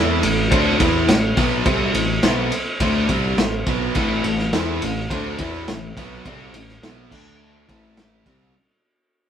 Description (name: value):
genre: classic rock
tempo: 105 BPM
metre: 4/4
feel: straight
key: A minor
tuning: A4 = 437 Hz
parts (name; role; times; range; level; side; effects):
- warm upright piano; accompaniment; 0.0-8.5 s; A3 to A5; -29 LUFS; right 2 dB; none
- biting overdriven guitar; riff; 0.0-8.5 s; A2 to E4; -25 LUFS; right 6 dB; none
- crunchy overdriven guitar; riff; 0.0-8.5 s; A2 to E4; -25 LUFS; left 6 dB; none
- growling fingered electric bass; bass; 0.0-8.5 s; A1 to E2; -26 LUFS; equal; overdrive
- vintage drum kit; drums; 0.2-8.4 s; crash cymbal, kick drum, ride cymbal, snare drum; -20 LUFS; equal; none
- fuzz guitar; riff; 3.9-8.5 s; A2 to E4; -31 LUFS; left 2 dB; distortion
room: wet studio ambience, RT60 0.5 s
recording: band playing live in one room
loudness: -17 LUFS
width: side -8 dB against mid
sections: 0.0-8.5 A section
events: fade-out 0.0-8.5; upright piano fill 7.4-8.5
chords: 0.0 Am; 7.1 D5; 7.7 Am